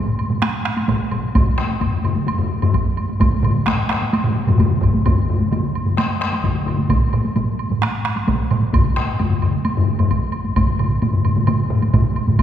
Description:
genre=japanese traditional, taiko drum ensemble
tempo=130 BPM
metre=4/4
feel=straight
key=none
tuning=none
part: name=woodblock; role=percussion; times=0.2-12.4 s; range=none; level=-30 LUFS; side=right 2 dB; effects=none
part: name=taiko ensemble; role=percussion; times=0.3-12.4 s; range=none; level=-23 LUFS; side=right 1 dB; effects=none
part: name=taiko ensemble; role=percussion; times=0.3-12.4 s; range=none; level=-20 LUFS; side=right 2 dB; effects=none
part: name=taiko ensemble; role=percussion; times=0.9-12.4 s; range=none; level=-22 LUFS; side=equal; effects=none
part: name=taiko ensemble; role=percussion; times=1.3-12.4 s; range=none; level=-20 LUFS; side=left 3 dB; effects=none
room=wet concert hall reverb, RT60 2.3 s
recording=recorded in a church or concert hall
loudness=-16 LUFS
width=side -10 dB against mid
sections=0.0-12.4 A section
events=none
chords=none

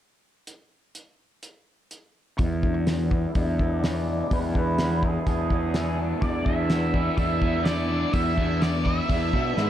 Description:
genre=psychedelic rock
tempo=125 BPM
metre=4/4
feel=straight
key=unclear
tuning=A4 = 440 Hz
part: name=cloth-damped thuddy drum kit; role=drums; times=0.5-9.7 s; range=hi-hat, kick drum, snare drum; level=-27 LUFS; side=equal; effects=none
part: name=octave-fuzz lead guitar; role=melody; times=2.4-9.7 s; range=G#4 to E5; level=-30 LUFS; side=right 1 dB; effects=wah, distortion, low-pass filter, tape echo
part: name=crunchy overdriven guitar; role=riff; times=2.4-9.7 s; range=E2 to E4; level=-28 LUFS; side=left 1 dB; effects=phaser, low-pass filter
part: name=fuzz fingered electric bass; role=bass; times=2.4-9.7 s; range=E2 to B2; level=-26 LUFS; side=equal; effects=overdrive
room=small room ambience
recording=none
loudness=-22 LUFS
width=side -11 dB against mid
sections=0.5-2.4 A section; 2.4-9.7 B section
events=filter sweep 2.4-9.7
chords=0.5 N.C.; 2.4 E7(no3)

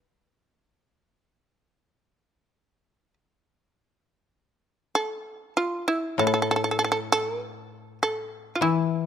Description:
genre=japanese traditional, Japanese chamber music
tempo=50 BPM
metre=4/4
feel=rubato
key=unclear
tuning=A4 = 439 Hz
part: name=shamisen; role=melody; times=0.0-9.1 s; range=E4 to B4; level=-25 LUFS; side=right 2 dB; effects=none
part: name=koto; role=accompaniment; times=6.2-9.1 s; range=A2 to E3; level=-27 LUFS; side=left 6 dB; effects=none
room=light reverb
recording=close, detailed microphones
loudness=-24 LUFS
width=side -8 dB against mid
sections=0.0-9.1 A section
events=none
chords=none

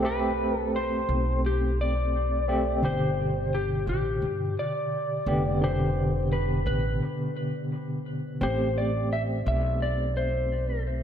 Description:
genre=trip hop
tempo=86 BPM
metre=4/4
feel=swing 59% on 16ths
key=A minor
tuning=A4 = 440 Hz
part: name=electric slide guitar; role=melody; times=0.0-10.8 s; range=G4 to E5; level=-30 LUFS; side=left 1 dB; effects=tape echo
part: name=tine electric piano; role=accompaniment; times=0.0-11.0 s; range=B2 to G4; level=-29 LUFS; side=equal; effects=tremolo, tape echo
part: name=upright bass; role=bass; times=0.0-11.0 s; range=F1 to G2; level=-29 LUFS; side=equal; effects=none
room=moderate lush hall reverb, RT60 2.1 s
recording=dreamy mix soaked in reverb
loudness=-24 LUFS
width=side -9 dB against mid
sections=0.0-8.4 A section; 8.4-11.0 B section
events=break 7.0-8.4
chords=0.0 Am7; 2.8 G; 8.4 Am7

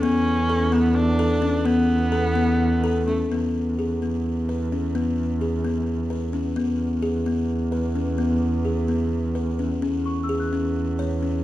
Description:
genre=contemporary instrumental, chamber music in an uneven meter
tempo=258 BPM (eighths)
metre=7/8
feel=straight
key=E mixolydian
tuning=A4 = 439 Hz
part: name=warm viola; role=second line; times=0.0-3.3 s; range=A3 to D4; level=-25 LUFS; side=right 1 dB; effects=none
part: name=buzzing kalimba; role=arpeggios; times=0.0-11.4 s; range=B3 to C#5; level=-23 LUFS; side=left 2 dB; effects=none
part: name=bright double bass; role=bass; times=0.0-11.4 s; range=E2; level=-25 LUFS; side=right 3 dB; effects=none
part: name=worn celesta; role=texture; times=0.0-0.4, 10.1-11.4 s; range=C#6 to F#6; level=-35 LUFS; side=left 1 dB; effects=none
room=moderate recital hall reverb, RT60 1.5 s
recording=dark, warm production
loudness=-20 LUFS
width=side -14 dB against mid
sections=0.0-3.3 A section; 3.3-11.4 B section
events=none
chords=0.0 Bm7/E; 3.3 E5; 9.8 C#m/E

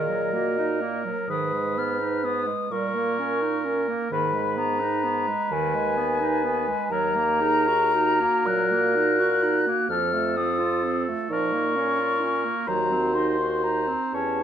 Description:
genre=classical, slow romantic movement for wind quintet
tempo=37-44 BPM (dotted quarters)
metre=6/8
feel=rubato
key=unclear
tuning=A4 = 439 Hz
part: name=mellow hollow silver concert flute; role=melody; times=0.0-14.4 s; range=Eb5 to Gb6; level=-26 LUFS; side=left 5 dB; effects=none
part: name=warm oboe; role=second line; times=0.0-14.4 s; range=A4 to C#5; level=-30 LUFS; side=equal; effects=none
part: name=bright clarinet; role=accompaniment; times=0.0-14.4 s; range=Eb3 to Gb4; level=-30 LUFS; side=right 10 dB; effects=none
part: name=mellow French horn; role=accompaniment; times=0.0-14.4 s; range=Db4 to Cb5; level=-30 LUFS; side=right 1 dB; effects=none
part: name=mellow bassoon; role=bass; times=0.0-14.4 s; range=Eb2 to Bb2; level=-28 LUFS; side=right 2 dB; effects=none
room=moderate recital hall reverb, RT60 1.4 s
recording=none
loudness=-22 LUFS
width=side -9 dB against mid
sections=0.0-14.4 A section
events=none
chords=0.0 Ebm; 1.3 Abm; 2.7 Eb7/Bb; 4.1 Abm; 6.9 Ebm; 9.9 F; 11.3 Bbm; 12.7 Cdim/Eb

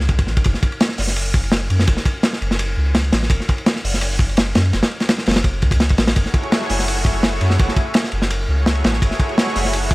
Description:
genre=drum and bass, jungle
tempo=168 BPM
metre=4/4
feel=straight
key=F# minor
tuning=A4 = 440 Hz
part: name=soft dub sub bass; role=bass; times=0.0-9.9 s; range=F#1 to F#2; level=-20 LUFS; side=equal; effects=tube saturation
part: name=crunchy breakbeat drum kit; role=drums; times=0.0-9.9 s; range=hi-hat, kick drum, ride cymbal, snare drum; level=-17 LUFS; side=equal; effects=none
part: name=lush unison pad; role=sustained chords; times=6.2-9.9 s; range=A3 to C#5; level=-24 LUFS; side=equal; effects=chorus, vintage 12-bit sampler grit
room=small room ambience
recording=vinyl crackle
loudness=-15 LUFS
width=side -21 dB against mid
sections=0.0-9.9 A section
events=none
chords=0.0 F#m7

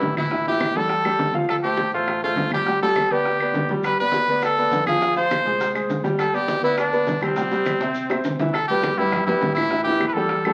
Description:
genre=latin, salsa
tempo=204 BPM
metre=4/4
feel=straight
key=C major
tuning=A4 = 439 Hz
part: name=brilliant trumpet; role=melody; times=0.0-10.5 s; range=C4 to C5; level=-24 LUFS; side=equal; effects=none
part: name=clear grand piano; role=accompaniment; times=0.0-10.5 s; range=E3 to G5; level=-26 LUFS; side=equal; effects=none
part: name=hollow-body short-scale fingered electric bass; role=bass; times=0.0-10.5 s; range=G1 to A2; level=-39 LUFS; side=equal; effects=none
part: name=bongos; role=percussion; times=0.0-10.5 s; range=none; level=-33 LUFS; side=equal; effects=none
part: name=congas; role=percussion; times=0.0-10.5 s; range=none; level=-33 LUFS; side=equal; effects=none
part: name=claves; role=percussion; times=0.2-10.5 s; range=none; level=-36 LUFS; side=equal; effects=none
part: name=maracas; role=percussion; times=3.8-8.5 s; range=none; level=-48 LUFS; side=equal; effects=none
room=wet club reverb, RT60 0.7 s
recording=very old 78 rpm record, vinyl crackle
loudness=-21 LUFS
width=mono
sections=0.0-8.5 A section; 8.5-10.5 A section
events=drum fill 7.8-8.5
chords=0.3 A5; 1.5 Dm7; 2.7 G; 3.8 G7; 5.0 Fm; 6.2 G; 7.4 C; 8.5 Cmaj7; 9.7 A5

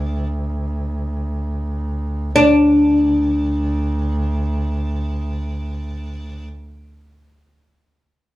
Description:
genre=Turkish makam ensemble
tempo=free time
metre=none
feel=none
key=unclear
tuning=A4 = 440 Hz
part: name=oud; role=melody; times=0.0-6.5 s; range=D4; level=-14 LUFS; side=left 1 dB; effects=plate reverb
part: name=clear double bass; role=drone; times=0.0-6.5 s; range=D2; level=-22 LUFS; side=right 1 dB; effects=none
room=moderate studio reverb, RT60 0.6 s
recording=studio ambience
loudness=-17 LUFS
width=side -16 dB against mid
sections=0.0-2.4 A section; 2.4-7.7 B section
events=none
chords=none

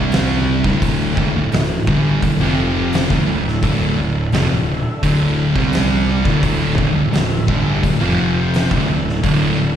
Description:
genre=stoner and doom metal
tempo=86 BPM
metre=4/4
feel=straight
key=D minor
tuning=A4 = 440 Hz
part: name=tonewheel organ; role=sustained chords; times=0.0-9.8 s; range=C3 to G5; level=-30 LUFS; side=equal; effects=slow rotary speaker, chorus vibrato
part: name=thick fuzz guitar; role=riff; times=0.0-9.8 s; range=D2 to C4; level=-20 LUFS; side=left 8 dB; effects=distortion, slapback echo
part: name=thick fuzz guitar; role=riff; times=0.0-9.8 s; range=D2 to C4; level=-19 LUFS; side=right 6 dB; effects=distortion, slapback echo
part: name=fuzz fingered electric bass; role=bass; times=0.0-9.8 s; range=D1 to C2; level=-22 LUFS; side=equal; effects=overdrive
part: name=oversized low-tuned drum kit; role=drums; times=0.1-9.4 s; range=hi-hat, kick drum, snare drum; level=-21 LUFS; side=equal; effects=none
room=light reverb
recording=live gig heard through the venue's PA, recital hall reverb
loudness=-14 LUFS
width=side -9 dB against mid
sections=0.0-9.8 A section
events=none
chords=0.0 C5; 0.6 D5; 2.4 F5; 3.1 Dm; 5.6 C5; 6.3 D5; 8.0 F5; 8.7 D5

